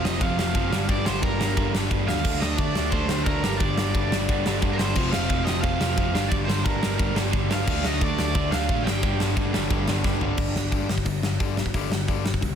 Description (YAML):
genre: punk rock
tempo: 177 BPM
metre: 4/4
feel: straight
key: unclear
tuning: A4 = 440 Hz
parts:
  - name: crunchy overdriven guitar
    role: melody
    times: 0.0-9.2 s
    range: Bb4 to G5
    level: -30 LUFS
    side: right 4 dB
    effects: none
  - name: crunchy overdriven guitar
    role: riff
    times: 0.0-12.6 s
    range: F2 to D4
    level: -29 LUFS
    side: left 13 dB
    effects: none
  - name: overdriven electric guitar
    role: riff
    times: 0.0-10.9 s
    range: F2 to D4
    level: -29 LUFS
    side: right 14 dB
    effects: none
  - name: overdriven picked electric bass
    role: bass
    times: 0.0-12.6 s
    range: F1 to Eb2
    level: -28 LUFS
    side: equal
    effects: none
  - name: big rock drum kit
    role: drums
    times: 0.1-12.5 s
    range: crash cymbal, hi-hat, kick drum, ride cymbal, snare drum, toms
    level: -26 LUFS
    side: equal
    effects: none
room: little or no reverb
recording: dense, heavily limited modern master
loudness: -21 LUFS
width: side -8 dB against mid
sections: 0.0-10.4 A section; 10.4-12.6 B section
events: drum fill 10.0-10.4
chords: 0.0 F5; 0.7 Gm; 2.2 D5; 3.4 G5; 5.0 F5; 6.1 Gm; 7.7 Dm; 8.9 G5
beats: 0.21 0.55 | 0.89 1.23 1.57 1.91 | 2.25 2.59 2.92 3.26 | 3.60 3.94 4.28 4.62 | 4.96 5.30 5.64 5.97 | 6.31 6.65 6.99 7.33 | 7.67 8.01 8.35 8.69 | 9.02 9.36 9.70 10.04 | 10.38 10.72 11.06 11.40 | 11.74 12.09 12.43